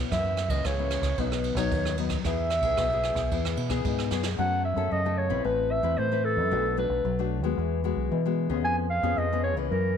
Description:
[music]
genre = samba and choro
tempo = 112 BPM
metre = 4/4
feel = straight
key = E major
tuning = A4 = 440 Hz
[part]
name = nylon-string guitar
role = accompaniment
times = 0.0-10.0 s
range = F#2 to B4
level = -30 LUFS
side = left 12 dB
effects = none
[part]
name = deep dub fingered electric bass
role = bass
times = 0.0-10.0 s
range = A1 to E3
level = -30 LUFS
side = right 1 dB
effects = none
[part]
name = mellow clarinet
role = melody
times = 0.1-10.0 s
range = A4 to G#5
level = -28 LUFS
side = right 2 dB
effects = none
[part]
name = jazz brush drum kit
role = drums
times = 0.1-4.4 s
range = kick drum, ride cymbal, rim click, snare drum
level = -32 LUFS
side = right 4 dB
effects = none
[sound]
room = light reverb, studio ambience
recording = 1960s-style stereo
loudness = -24 LUFS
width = side -8 dB against mid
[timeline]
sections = 0.0-4.4 A section; 4.4-10.0 B section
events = drum fill 4.1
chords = 0.1 F#7; 1.2 B; 2.3 E; 4.4 F#m; 5.5 Amadd9; 6.5 Bm7; 7.6 Eadd9; 8.6 C#7/E#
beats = | 0.12 0.65 1.19 1.72 | 2.25 2.79 3.32 3.85 | 4.38 4.92 5.45 5.98 | 6.52 7.05 7.58 8.12 | 8.65 9.18 9.71

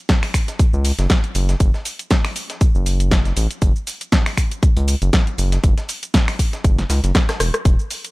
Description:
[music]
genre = deep house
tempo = 119 BPM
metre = 4/4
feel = swing 55% on 16ths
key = unclear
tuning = A4 = 439 Hz
[part]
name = breakbeat sampler-style drum kit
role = drums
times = 0.1-8.0 s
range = hi-hat, snare drum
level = -32 LUFS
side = equal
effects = high-pass filter on snare, sidechain pumping on hats, high-pass filter on hats
[part]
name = electronic kick drum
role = drums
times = 0.1-7.8 s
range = none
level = -16 LUFS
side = equal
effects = none
[part]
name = house drum kit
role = drums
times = 0.1-8.1 s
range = finger snaps, hi-hat, rim click, shaker, snare drum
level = -22 LUFS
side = equal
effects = none
[part]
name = round analog bass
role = bass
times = 0.7-7.8 s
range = E1 to C#2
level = -18 LUFS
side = equal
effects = tube saturation, sidechain pumping
[sound]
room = little or no reverb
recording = none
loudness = -16 LUFS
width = side -22 dB against mid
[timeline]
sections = 0.0-8.1 A section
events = drum fill 7.1-7.7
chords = none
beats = 0.09 0.59 1.10 | 1.60 2.11 2.61 3.12 | 3.62 4.12 4.63 5.13 | 5.64 6.14 6.64 7.15 | 7.65

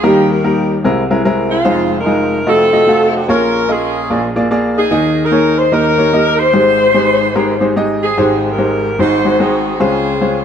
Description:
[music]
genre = gospel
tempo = 147 BPM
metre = 4/4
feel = swing 63% on 8ths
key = Ab major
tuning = A4 = 440 Hz
[part]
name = bright saxophone section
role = melody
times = 0.0-10.4 s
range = G#3 to C5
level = -14 LUFS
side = equal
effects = none
[part]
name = bright baby grand piano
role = accompaniment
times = 0.0-10.4 s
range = F1 to F5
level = -13 LUFS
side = equal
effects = none
[sound]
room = moderate echo chamber reverb, RT60 1.9 s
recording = dark, warm production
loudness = -11 LUFS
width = side -8 dB against mid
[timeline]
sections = 0.0-10.4 A section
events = none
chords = 0.0 Eb; 0.8 Caug7; 1.7 Fm7; 2.5 F7b9; 3.3 Bbm7; 4.1 Bb7; 4.9 Ebsus4; 5.7 Eb; 6.5 Abmaj7; 9.0 Ab7; 9.8 Dbmaj7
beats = | 0.03 0.44 0.85 1.25 | 1.66 2.07 2.47 2.88 | 3.29 3.69 4.10 4.51 | 4.92 5.32 5.73 6.14 | 6.55 6.95 7.36 7.77 | 8.18 8.58 8.99 9.40 | 9.81 10.22

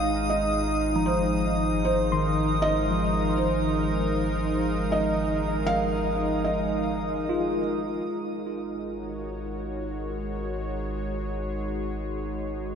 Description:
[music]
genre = ambient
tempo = 77 BPM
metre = 4/4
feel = straight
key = Ab mixolydian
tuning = A4 = 439 Hz
[part]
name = felt-muted upright piano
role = melody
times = 0.0-7.6 s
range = C5 to F5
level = -29 LUFS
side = right 1 dB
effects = tape echo
[part]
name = warm analog pad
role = sustained chords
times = 0.0-12.8 s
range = Ab3 to F5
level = -29 LUFS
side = right 2 dB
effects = chorus
[part]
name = tine electric piano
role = arpeggios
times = 0.0-9.0 s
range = Eb3 to C6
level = -30 LUFS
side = left 2 dB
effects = overdrive, fast stereo tremolo, tape echo
[part]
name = round analog bass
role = bass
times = 0.0-12.8 s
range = Ab1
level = -32 LUFS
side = equal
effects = none
[part]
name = organ-like drone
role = drone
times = 0.0-12.8 s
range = Ab3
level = -46 LUFS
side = right 3 dB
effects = none
[part]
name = drifting glass-harmonics texture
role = texture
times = 0.0-8.1 s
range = Eb6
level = -35 LUFS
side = equal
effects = chorus, built-in reverb
[sound]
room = wet huge ambient reverb, RT60 7.9 s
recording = in a vast, echoing space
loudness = -24 LUFS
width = side -7 dB against mid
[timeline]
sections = 0.0-8.1 A section; 8.1-12.8 B section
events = none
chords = 0.0 Ab6; 8.1 Ab7sus4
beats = 0.27 1.05 | 1.83 2.61 3.38 4.16 | 4.94 5.72 6.50 7.28 | 8.06 8.84 9.62 10.40 | 11.18 11.96 12.73

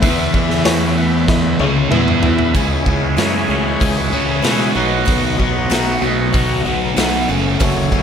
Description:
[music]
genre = classic rock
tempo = 95 BPM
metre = 4/4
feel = straight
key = C# minor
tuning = A4 = 441 Hz
[part]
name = tack piano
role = accompaniment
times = 0.0-2.5 s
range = E4 to E5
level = -24 LUFS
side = left 5 dB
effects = none
[part]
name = overdriven tonewheel organ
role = sustained chords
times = 0.0-8.0 s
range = F#3 to E5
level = -22 LUFS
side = equal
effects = slow rotary speaker
[part]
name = crunchy overdriven guitar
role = riff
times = 0.0-8.0 s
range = F#2 to E4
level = -21 LUFS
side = left 8 dB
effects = phaser
[part]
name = crunchy overdriven guitar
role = riff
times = 0.0-8.0 s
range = F#2 to E4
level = -20 LUFS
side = right 8 dB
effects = phaser
[part]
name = thick fuzz guitar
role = riff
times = 0.0-2.5 s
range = C#3 to E4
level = -22 LUFS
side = equal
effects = distortion
[part]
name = fuzz fingered electric bass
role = bass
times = 0.0-8.0 s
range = F#1 to B2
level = -22 LUFS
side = equal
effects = overdrive
[part]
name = raw garage drum kit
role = drums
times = 0.0-8.0 s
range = hi-hat, kick drum, snare drum, toms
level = -19 LUFS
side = equal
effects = none
[part]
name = picked swing-style acoustic guitar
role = accompaniment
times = 2.5-8.0 s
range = F#2 to G#4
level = -26 LUFS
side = left 3 dB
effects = none
[sound]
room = light reverb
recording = none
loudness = -13 LUFS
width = side -7 dB against mid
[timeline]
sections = 0.0-2.5 A section; 2.5-8.0 B section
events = drum fill 1.3-2.5; tonewheel organ solo 2.5-8.0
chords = 0.0 E5; 1.6 C#m; 1.9 E5; 2.5 C#m; 4.8 B; 7.3 F#m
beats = | 0.02 0.65 1.28 1.91 | 2.54 3.18 3.81 4.44 | 5.07 5.71 6.34 6.97 | 7.60

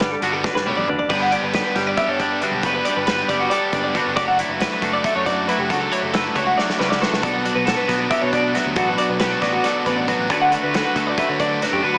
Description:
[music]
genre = math rock and midwest emo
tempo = 274 BPM (eighths)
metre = 7/8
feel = straight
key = unclear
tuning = A4 = 439 Hz
[part]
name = twelve-string electric guitar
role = accompaniment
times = 0.0-12.0 s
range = G2 to B4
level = -26 LUFS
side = equal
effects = none
[part]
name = twelve-string electric guitar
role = arpeggios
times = 0.0-12.0 s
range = F#4 to F#5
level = -24 LUFS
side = equal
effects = harmonic tremolo, tape echo
[part]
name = cranked stack guitar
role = riff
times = 0.0-12.0 s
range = B2 to G4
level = -26 LUFS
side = equal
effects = overdrive
[part]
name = picked electric bass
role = bass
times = 0.0-11.8 s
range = F#1 to D3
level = -32 LUFS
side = equal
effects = none
[part]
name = loose indie drum kit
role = drums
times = 0.0-11.7 s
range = crash cymbal, hi-hat, kick drum, snare drum, toms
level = -29 LUFS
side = equal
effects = none
[sound]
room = moderate studio reverb, RT60 0.6 s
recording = small speaker sound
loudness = -20 LUFS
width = mono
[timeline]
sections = 0.0-1.1 A section; 1.1-12.0 B section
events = drum fill 0.4-1.1, 6.6-7.2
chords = 0.0 Gmaj7; 1.1 Dmaj9/F#; 7.2 Bm7; 10.3 D6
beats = 0.01 0.22 0.44 0.66 0.88 | 1.10 1.32 1.54 1.76 1.98 2.20 2.42 | 2.63 2.85 3.07 3.29 3.51 3.73 3.95 | 4.17 4.39 4.61 4.83 5.05 5.27 5.49 | 5.71 5.92 6.14 6.36 6.58 6.80 7.02 | 7.24 7.46 7.68 7.90 8.12 8.34 8.55 | 8.77 8.99 9.21 9.43 9.65 9.87 10.09 | 10.31 10.53 10.74 10.96 11.18 11.40 11.62 | 11.84

